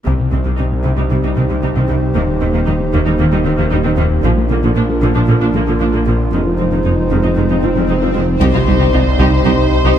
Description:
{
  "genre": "cinematic, hybrid orchestral and electronic film score",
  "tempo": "115 BPM",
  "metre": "4/4",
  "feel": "straight",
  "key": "unclear",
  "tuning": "A4 = 436 Hz",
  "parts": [
    { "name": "warm studio viola section", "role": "accompaniment", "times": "0.1-9.9 s", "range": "C3 to Eb4", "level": "-22 LUFS", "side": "right 2 dB", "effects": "none" },
    { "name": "dark analog pad", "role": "sustained chords", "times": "0.1-10.0 s", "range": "G3 to C5", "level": "-19 LUFS", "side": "right 2 dB", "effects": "chorus" },
    { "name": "smooth gliding synth bass", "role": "riff", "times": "0.1-9.9 s", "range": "C2 to Bb3", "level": "-19 LUFS", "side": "left 3 dB", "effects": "none" },
    { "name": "rich symphonic cello section", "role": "bass", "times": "0.1-9.9 s", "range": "C2 to Eb3", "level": "-21 LUFS", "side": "right 2 dB", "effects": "none" },
    { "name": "rich symphonic double bass section", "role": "bass", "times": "0.1-9.5 s", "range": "F1 to Eb2", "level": "-22 LUFS", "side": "right 3 dB", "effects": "none" },
    { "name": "snarling distorted saw bass", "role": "bass", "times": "0.1-10.0 s", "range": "Eb1 to C2", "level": "-19 LUFS", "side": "equal", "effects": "distortion" },
    { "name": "swell and impact", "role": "sound effects", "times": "7.0-10.0 s", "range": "none", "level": "-22 LUFS", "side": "equal", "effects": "none" },
    { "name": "warm symphonic violin section", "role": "melody", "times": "8.4-10.0 s", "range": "C5", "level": "-19 LUFS", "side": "left 5 dB", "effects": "none" },
    { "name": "warm studio violin section", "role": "second line", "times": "8.4-9.9 s", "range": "F4 to G4", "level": "-24 LUFS", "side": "left 3 dB", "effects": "none" },
    { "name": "mellow French horn section", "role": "sustained chords", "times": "8.4-10.0 s", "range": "C4 to Eb4", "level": "-23 LUFS", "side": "left 2 dB", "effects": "none" },
    { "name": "warm trombone section", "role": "sustained chords", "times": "8.4-10.0 s", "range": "C3 to G3", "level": "-23 LUFS", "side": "right 9 dB", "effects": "none" },
    { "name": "mellow tuba", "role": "bass", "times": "8.4-9.5 s", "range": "C2", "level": "-20 LUFS", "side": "right 4 dB", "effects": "none" }
  ],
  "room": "light reverb",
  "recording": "none",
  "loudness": "-12 LUFS",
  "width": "side -10 dB against mid",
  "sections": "0.1-8.4 A section; 8.4-10.0 B section",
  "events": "swell 7.0-8.4; impact 8.4-10.0",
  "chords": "0.1 Cm; 2.2 Eb6; 4.2 Bb; 6.3 Fm7; 8.4 Cm"
}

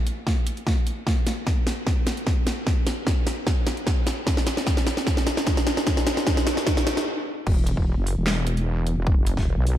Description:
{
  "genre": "heavy wobble dubstep",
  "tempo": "150 BPM",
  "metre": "4/4",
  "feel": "half-time",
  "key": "unclear",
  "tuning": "A4 = 439 Hz",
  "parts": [
    { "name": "dubstep drum kit", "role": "drums", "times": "0.1-9.8 s", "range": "crash cymbal, handclaps, hi-hat, snare drum", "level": "-25 LUFS", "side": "equal", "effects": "small room reverb" },
    { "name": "electronic kick drum", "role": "drums", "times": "0.3-9.4 s", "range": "none", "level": "-23 LUFS", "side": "equal", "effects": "small room reverb" },
    { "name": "wobble bass", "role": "bass", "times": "7.5-9.8 s", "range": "E1 to B1", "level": "-23 LUFS", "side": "equal", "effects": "chorus, overdrive" }
  ],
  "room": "moderate lush hall reverb, RT60 2.1 s",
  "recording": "dark, warm production",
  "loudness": "-21 LUFS",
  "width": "side -12 dB against mid",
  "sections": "0.0-7.5 A section; 7.5-9.8 B section",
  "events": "build-up 0.0-7.5; drum fill 0.0-7.1; stop 7.1-7.5; drop 7.5-9.8",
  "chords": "none"
}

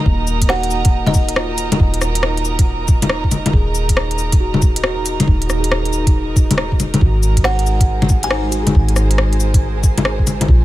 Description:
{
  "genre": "future garage",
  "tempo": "138 BPM",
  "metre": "4/4",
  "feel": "swing 65% on 16ths",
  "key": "Eb dorian",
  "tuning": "A4 = 440 Hz",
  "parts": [
    { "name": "mellow tine electric piano", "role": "accompaniment", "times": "0.0-10.6 s", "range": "Bb3 to Ab4", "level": "-26 LUFS", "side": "right 2 dB", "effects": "medium stereo tremolo, sidechain pumping, dub echo" },
    { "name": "dark studio string section", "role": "sustained chords", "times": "0.0-10.6 s", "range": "Ab3 to Bb5", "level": "-25 LUFS", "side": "right 3 dB", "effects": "sidechain pumping" },
    { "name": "flickering grainy texture", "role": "texture", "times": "0.0-0.1, 7.6-10.6 s", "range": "Ab4 to Ab5", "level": "-35 LUFS", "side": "right 2 dB", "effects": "none" },
    { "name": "soft 808-style bass", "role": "bass", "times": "0.1-10.6 s", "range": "Eb1 to Bb1", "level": "-19 LUFS", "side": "equal", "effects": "sidechain pumping" },
    { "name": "electronic kick drum", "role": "drums", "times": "0.1-10.6 s", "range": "none", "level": "-14 LUFS", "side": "equal", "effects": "studio reverb" },
    { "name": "organic electronic drum kit", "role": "drums", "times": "0.3-10.5 s", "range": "bongos, cabasa, hi-hat, rim click", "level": "-19 LUFS", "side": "left 2 dB", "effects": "studio reverb" },
    { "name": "buzzing kalimba", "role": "melody", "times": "0.5-1.5, 7.4-8.8 s", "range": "Eb5 to Ab5", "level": "-25 LUFS", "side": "right 1 dB", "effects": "dub echo" }
  ],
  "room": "little or no reverb",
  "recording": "none",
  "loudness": "-13 LUFS",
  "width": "side -15 dB against mid",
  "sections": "0.1-10.6 A section",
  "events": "none",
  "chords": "0.1 Ebm; 7.0 Ab9"
}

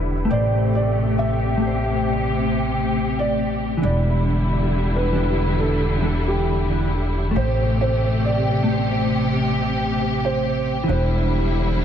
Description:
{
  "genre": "trip hop",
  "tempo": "68 BPM",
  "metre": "4/4",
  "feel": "swing 54% on 16ths",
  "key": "A minor",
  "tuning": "A4 = 440 Hz",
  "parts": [
    { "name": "felt-muted upright piano", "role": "melody", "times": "0.0-11.3 s", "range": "G4 to E5", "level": "-27 LUFS", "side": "right 2 dB", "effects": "vintage 12-bit sampler grit, dub echo" },
    { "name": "mellow electric guitar", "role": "accompaniment", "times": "0.0-11.8 s", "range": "E3 to C5", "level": "-25 LUFS", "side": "left 1 dB", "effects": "tremolo, tape echo" },
    { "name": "warm studio string section", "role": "sustained chords", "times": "0.0-11.8 s", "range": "C3 to G4", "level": "-24 LUFS", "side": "equal", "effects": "low-pass filter" },
    { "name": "upright bass", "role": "bass", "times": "0.0-11.8 s", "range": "E1 to A1", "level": "-22 LUFS", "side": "equal", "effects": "tube saturation" }
  ],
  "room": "moderate lush hall reverb, RT60 2.6 s",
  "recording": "dreamy mix soaked in reverb",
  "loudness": "-18 LUFS",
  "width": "side -9 dB against mid",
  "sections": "0.0-11.8 A section",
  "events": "none",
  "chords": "0.3 Am7; 3.8 Em7; 7.4 Am7; 10.9 Em7"
}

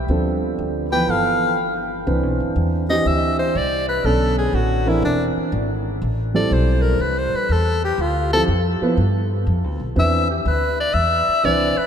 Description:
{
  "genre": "jazz, small-group swing and bop",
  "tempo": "122 BPM",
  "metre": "4/4",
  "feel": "swing 67% on 8ths",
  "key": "C major",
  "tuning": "A4 = 441 Hz",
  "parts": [
    { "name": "upright bass", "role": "bass", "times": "0.0-11.8 s", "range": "E1 to G2", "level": "-22 LUFS", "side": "equal", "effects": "none" },
    { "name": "warm grand piano", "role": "accompaniment", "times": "0.1-11.7 s", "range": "D3 to B4", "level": "-23 LUFS", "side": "right 2 dB", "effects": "none" },
    { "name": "clear soprano saxophone", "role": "melody", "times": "0.9-11.9 s", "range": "D4 to G5", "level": "-21 LUFS", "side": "left 2 dB", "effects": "none" },
    { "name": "breathy trumpet", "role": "second line", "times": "0.9-1.6 s", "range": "A4 to B4", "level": "-32 LUFS", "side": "right 2 dB", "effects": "none" }
  ],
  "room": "wet cathedral reverb, RT60 5.1 s",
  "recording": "in a vast, echoing space",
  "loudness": "-17 LUFS",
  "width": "side -8 dB against mid",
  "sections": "0.0-2.1 A section; 2.1-11.9 B section",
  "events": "none",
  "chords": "0.1 Dm7; 1.1 G13; 2.1 Cmaj9; 4.0 Bm9; 5.0 Eaug7; 6.0 Am7; 8.0 Dm11; 9.0 G7; 10.0 Cmaj9"
}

